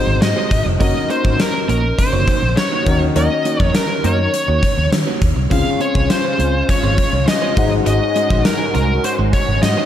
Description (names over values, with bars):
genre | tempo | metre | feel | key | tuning
1980s-style pop | 102 BPM | 4/4 | straight | Db major | A4 = 439 Hz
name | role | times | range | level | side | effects
high-gain lead guitar | melody | 0.0-9.9 s | Bb4 to F5 | -20 LUFS | equal | distortion, digital delay
warm studio violin section | second line | 0.0-9.9 s | Bb5 to F6 | -32 LUFS | equal | digital delay
warm concert grand piano | accompaniment | 0.0-9.9 s | Ab2 to Gb5 | -23 LUFS | left 5 dB | none
electric guitar at the edge of break-up | riff | 0.1-9.9 s | Ab3 to Db5 | -26 LUFS | right 7 dB | analog chorus
vintage muted fingered electric bass | bass | 0.1-9.7 s | F1 to Eb3 | -19 LUFS | equal | none
gated 80s drum kit | drums | 0.2-9.8 s | hi-hat, kick drum, snare drum, tambourine | -18 LUFS | equal | none
funky polysynth comp | stabs | 3.2-4.3 s | Gb3 to Bb4 | -26 LUFS | left 2 dB | chorus
lush unison pad | sustained chords | 5.5-9.9 s | Db3 to Gb4 | -25 LUFS | left 1 dB | chorus
room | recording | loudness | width
light reverb, studio ambience | dark, warm production | -14 LUFS | side -10 dB against mid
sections
0.0-9.9 A section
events
band accent 3.2-5.5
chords
0.0 Ab7; 0.8 Gb6; 2.9 Ebm7; 5.5 Dbmaj7; 7.6 Ab7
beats
0.22 | 0.81 1.39 1.98 2.57 | 3.16 3.75 4.33 4.92 | 5.51 6.10 6.69 7.28 | 7.87 8.45 9.04 9.63